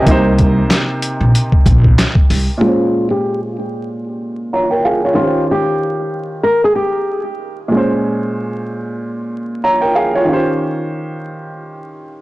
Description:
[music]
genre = hip hop, boom-bap hip-hop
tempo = 94 BPM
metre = 4/4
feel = swing 57% on 16ths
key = Bb dorian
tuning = A4 = 443 Hz
[part]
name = warm upright piano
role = accompaniment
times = 0.0-12.2 s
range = Bb2 to Bb5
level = -17 LUFS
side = right 1 dB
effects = high-pass filter, low-pass filter
[part]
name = upright bass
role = bass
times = 0.1-2.5 s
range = Bb1 to C2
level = -13 LUFS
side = equal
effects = tube saturation
[part]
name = boom bap sampler-style drum kit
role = drums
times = 0.1-2.5 s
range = handclaps, hi-hat, kick drum, snare drum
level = -13 LUFS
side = equal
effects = none
[part]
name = flamenco guitar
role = melody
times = 2.6-7.2 s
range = F4 to Bb4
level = -16 LUFS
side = left 1 dB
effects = high-pass filter, low-pass filter, plate reverb, digital delay
[sound]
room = light reverb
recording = blown-out, overdriven recording, vinyl crackle, overdrive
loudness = -13 LUFS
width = side -18 dB against mid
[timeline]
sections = 0.0-2.6 A section; 2.6-12.2 B section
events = filter sweep 2.6-12.2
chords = 0.1 Cm7; 2.6 Bbm9; 5.2 Eb13; 7.7 Bbm9; 10.3 Eb13

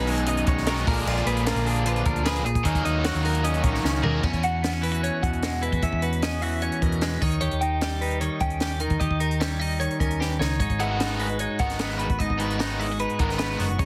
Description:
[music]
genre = math rock and midwest emo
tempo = 151 BPM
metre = 4/4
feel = straight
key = E lydian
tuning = A4 = 439 Hz
[part]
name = clean electric guitar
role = accompaniment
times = 0.0-13.9 s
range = E2 to A#4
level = -31 LUFS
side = equal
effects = none
[part]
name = clean electric guitar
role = arpeggios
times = 0.0-13.9 s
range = G#4 to G5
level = -32 LUFS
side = equal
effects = subtle chorus, slapback echo
[part]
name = raw garage guitar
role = riff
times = 0.0-4.2, 10.8-13.7 s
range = A#2 to G#4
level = -31 LUFS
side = equal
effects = overdrive
[part]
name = hollow-body short-scale fingered electric bass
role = bass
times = 0.0-13.9 s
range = F#1 to E2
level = -30 LUFS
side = equal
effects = none
[part]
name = compact cocktail drum kit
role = drums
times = 0.1-13.9 s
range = crash cymbal, hi-hat, kick drum, snare drum, toms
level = -31 LUFS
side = equal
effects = none
[sound]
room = light reverb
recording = heavily compressed radio sound, multiband compression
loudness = -25 LUFS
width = mono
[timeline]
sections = 0.0-4.2 A section; 4.2-13.9 B section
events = drum fill 3.8-4.2, 10.2-10.6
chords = 0.0 B69; 0.9 A#7b9; 2.6 D#m7; 4.2 E69; 7.2 D#7; 10.6 G#m7

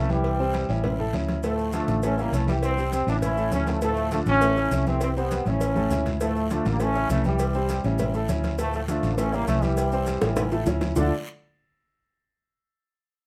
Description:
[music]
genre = latin, salsa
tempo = 201 BPM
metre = 4/4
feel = straight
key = D harmonic minor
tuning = A4 = 441 Hz
[part]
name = bright trombone section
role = melody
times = 0.0-11.1 s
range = D3 to E4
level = -29 LUFS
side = equal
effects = none
[part]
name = clear grand piano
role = accompaniment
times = 0.0-11.1 s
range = A2 to D5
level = -31 LUFS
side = equal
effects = none
[part]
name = hollow-body short-scale fingered electric bass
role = bass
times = 0.0-11.1 s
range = A1 to D2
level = -29 LUFS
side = equal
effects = none
[part]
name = congas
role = percussion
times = 0.1-11.0 s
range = none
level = -35 LUFS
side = equal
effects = none
[part]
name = guiro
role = percussion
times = 0.1-11.0 s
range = none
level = -48 LUFS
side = equal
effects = none
[part]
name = cowbell and bongos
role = percussion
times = 0.2-11.0 s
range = none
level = -34 LUFS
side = equal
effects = none
[part]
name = maracas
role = percussion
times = 1.4-11.0 s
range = none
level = -47 LUFS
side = equal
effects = none
[sound]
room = light reverb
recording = none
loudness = -24 LUFS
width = mono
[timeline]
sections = 0.0-6.2 A section; 6.2-11.0 B section; 11.0-12.2 C section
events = drum fill 5.5-6.2, 10.2-11.0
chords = 0.0 A7; 0.8 A; 1.4 Dm; 2.0 A7; 3.2 A; 3.8 Dm; 4.4 A7; 5.6 A; 6.2 Dm; 6.8 A7; 8.0 A; 8.6 Dm; 9.2 A7; 10.4 A; 11.0 D5

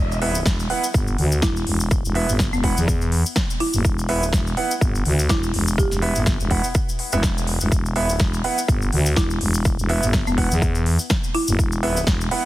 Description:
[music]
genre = bass house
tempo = 124 BPM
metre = 4/4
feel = swing 57% on 16ths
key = E minor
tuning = A4 = 441 Hz
[part]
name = growling FM bass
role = bass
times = 0.0-12.3 s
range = E1 to E2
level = -21 LUFS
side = equal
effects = sidechain pumping
[part]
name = cabasa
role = percussion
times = 0.1-12.3 s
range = none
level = -30 LUFS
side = left 2 dB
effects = none
[part]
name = warm concert grand piano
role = stabs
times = 0.2-12.5 s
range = B3 to F#5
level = -26 LUFS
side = right 3 dB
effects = sidechain pumping, ping-pong delay
[part]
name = big-room dance drum kit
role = drums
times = 0.2-12.4 s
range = hi-hat, snare drum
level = -27 LUFS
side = equal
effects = overdrive
[part]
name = electronic kick drum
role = drums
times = 0.5-12.2 s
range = none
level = -22 LUFS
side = equal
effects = overdrive
[part]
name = folk marimba with medium mallets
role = melody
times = 1.4-11.8 s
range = B3 to G4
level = -28 LUFS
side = equal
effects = ping-pong delay
[sound]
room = small room ambience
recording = heavily compressed radio sound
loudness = -18 LUFS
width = side -16 dB against mid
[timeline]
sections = 0.0-12.5 A section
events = none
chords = 0.0 E5

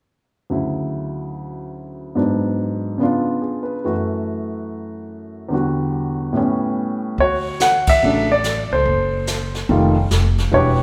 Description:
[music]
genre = jazz piano trio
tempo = 144 BPM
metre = 4/4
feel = swing 66% on 8ths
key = D major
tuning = A4 = 440 Hz
[part]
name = warm upright piano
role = melody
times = 0.5-10.8 s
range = D2 to F#5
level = -21 LUFS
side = equal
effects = none
[part]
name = upright bass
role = bass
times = 7.2-10.8 s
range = E1 to D2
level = -23 LUFS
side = equal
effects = none
[part]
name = jazz brush drum kit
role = drums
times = 7.2-10.8 s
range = brushed snare drum, hi-hat, kick drum, ride cymbal, snare drum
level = -26 LUFS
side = equal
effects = none
[sound]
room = wet recital hall reverb, RT60 1.6 s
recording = recorded in a church or concert hall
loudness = -19 LUFS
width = mono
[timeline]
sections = 0.5-7.2 A section; 7.2-10.8 B section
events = band accent 7.8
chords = 0.5 Dmaj9; 2.2 G#m7b5; 3.0 C#7b9; 3.8 F#m7; 5.5 Em9; 6.4 A9; 7.2 Dmaj7; 8.9 F#dim; 9.7 F9

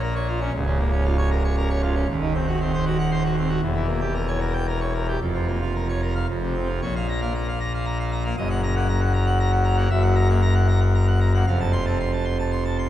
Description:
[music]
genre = classical, organ toccata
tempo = 116 BPM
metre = 3/4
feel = straight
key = Bb minor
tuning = A4 = 440 Hz
[part]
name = pipe organ, full organ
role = solo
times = 0.0-12.9 s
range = Db1 to C6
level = -20 LUFS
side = equal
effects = none
[sound]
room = wet church reverb, RT60 3.2 s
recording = dark, warm production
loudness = -20 LUFS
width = side -12 dB against mid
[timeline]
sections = 0.0-6.8 A section; 6.8-12.9 B section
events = none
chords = 0.0 Bbm; 0.5 Bbm/Db; 2.1 Cdim/Eb; 3.6 Edim7; 5.2 Bbm/F; 6.3 F5; 6.8 Bbm; 8.4 Ebm/Gb; 9.9 Gb7; 11.5 F

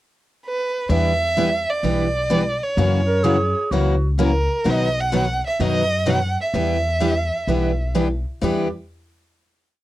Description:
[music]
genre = acoustic string swing (jazz manouche)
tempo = 128 BPM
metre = 4/4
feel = swing 65% on 8ths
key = E minor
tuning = A4 = 445 Hz
[part]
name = warm violin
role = melody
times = 0.5-7.9 s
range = A#4 to F#5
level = -22 LUFS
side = right 2 dB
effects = none
[part]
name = picked steel-string acoustic guitar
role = accompaniment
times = 0.9-8.7 s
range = B2 to G4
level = -23 LUFS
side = left 4 dB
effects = none
[part]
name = picked steel-string acoustic guitar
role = accompaniment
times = 0.9-8.7 s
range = B2 to B4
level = -24 LUFS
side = right 5 dB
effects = none
[part]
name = upright bass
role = bass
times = 0.9-8.7 s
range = B1 to F#2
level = -22 LUFS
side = equal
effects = none
[part]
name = growling clarinet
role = second line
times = 3.1-4.1, 8.4-8.7 s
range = F#4 to A#4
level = -23 LUFS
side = right 2 dB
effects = none
[sound]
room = little or no reverb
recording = dry, close 1970s-style studio recording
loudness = -18 LUFS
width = side -15 dB against mid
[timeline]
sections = 0.0-0.9 pickup bar; 0.9-8.4 A section; 8.4-9.8 final chord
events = none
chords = 0.0 N.C.; 0.9 Em7; 2.8 F#7; 4.7 B; 6.5 Em7

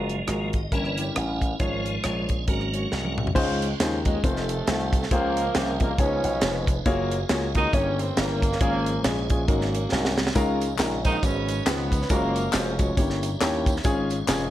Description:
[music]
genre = uptempo gospel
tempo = 137 BPM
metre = 4/4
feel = swing 58% on 8ths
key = Db major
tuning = A4 = 440 Hz
[part]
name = dark upright piano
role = accompaniment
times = 0.0-14.5 s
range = G2 to Eb5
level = -27 LUFS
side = left 2 dB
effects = none
[part]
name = tonewheel organ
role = sustained chords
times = 0.0-14.5 s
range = E3 to Cb6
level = -34 LUFS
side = right 2 dB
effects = slow rotary speaker, overdrive, chorus vibrato
[part]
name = slap bass with an envelope filter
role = bass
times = 0.0-14.5 s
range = F1 to Eb2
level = -29 LUFS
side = equal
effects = none
[part]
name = tight funk drum kit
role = drums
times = 0.1-14.4 s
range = crash cymbal, hi-hat, kick drum, rim click, snare drum, toms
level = -26 LUFS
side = equal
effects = none
[part]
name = mellow horn section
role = melody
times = 4.1-13.0 s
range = C3 to Eb4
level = -28 LUFS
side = right 2 dB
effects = none
[part]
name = tambourine and handclaps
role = percussion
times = 10.4-14.4 s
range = none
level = -34 LUFS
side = left 5 dB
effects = none
[sound]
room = light reverb, small room ambience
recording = none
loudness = -22 LUFS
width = side -13 dB against mid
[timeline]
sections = 0.0-3.4 A section; 3.4-14.5 B section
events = tonewheel organ solo 0.0-3.4; drum fill 2.9-3.4, 9.9-10.4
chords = 0.0 Gbmaj9; 0.7 Gdim7; 1.6 Db/Ab; 2.5 Ab9sus4; 3.4 Dbmaj9; 4.2 F7; 5.1 Bbm9/Db; 6.0 Db9; 6.9 Gbmaj9; 7.7 Gdim7; 8.6 Db/Ab; 9.5 Ab9sus4; 10.4 Db69; 11.2 Abm7; 11.7 Db9; 12.1 Gbmaj9; 13.0 Gdim7; 13.8 Db/Ab

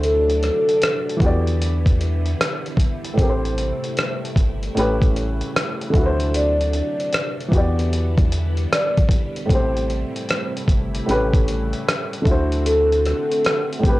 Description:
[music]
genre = lo-fi hip hop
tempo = 76 BPM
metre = 4/4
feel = swing 65% on 16ths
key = A dorian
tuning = A4 = 440 Hz
[part]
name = vibraphone with soft mallets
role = melody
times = 0.0-13.7 s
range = A4 to D5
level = -22 LUFS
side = equal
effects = low-pass filter, tape echo, plate reverb
[part]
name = dark upright piano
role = accompaniment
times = 0.0-14.0 s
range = A2 to D5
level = -24 LUFS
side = equal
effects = cassette tape, low-pass filter
[part]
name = string machine, full ensemble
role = sustained chords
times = 0.0-14.0 s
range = C3 to B4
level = -30 LUFS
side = equal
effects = phaser, ensemble chorus, low-pass filter
[part]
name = soft dub sub bass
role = bass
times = 0.0-14.0 s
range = G1 to E2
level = -22 LUFS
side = equal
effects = transformer saturation
[part]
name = dusty soul sampler-style drum kit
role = drums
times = 0.0-14.0 s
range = hi-hat, kick drum, rim click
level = -20 LUFS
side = equal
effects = none
[sound]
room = light reverb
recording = dry, gritty hardware recording, cassette tape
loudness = -17 LUFS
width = side -18 dB against mid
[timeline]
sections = 0.0-14.0 A section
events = none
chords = 0.0 D7; 1.2 Em7; 3.2 Am7; 4.8 A7; 5.9 D7; 7.5 Em7; 9.5 Am7; 11.1 A7; 12.3 D7

